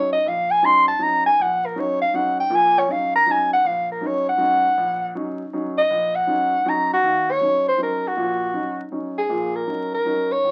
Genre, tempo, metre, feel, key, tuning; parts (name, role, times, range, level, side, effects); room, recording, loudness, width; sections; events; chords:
jazz; 159 BPM; 3/4; swing 66% on 8ths; Eb minor; A4 = 440 Hz
mellow soprano saxophone; melody; 0.0-10.5 s; Gb4 to C6; -20 LUFS; equal
warm grand piano; accompaniment; 0.0-10.5 s; Bb1 to Eb4; -30 LUFS; equal
wet studio reverb, RT60 0.5 s; very old 78 rpm record, vinyl crackle; -20 LUFS; mono
0.0-7.0 A section; 7.0-10.5 B section
soprano saxophone solo 0.0-7.0
0.0 Ebm7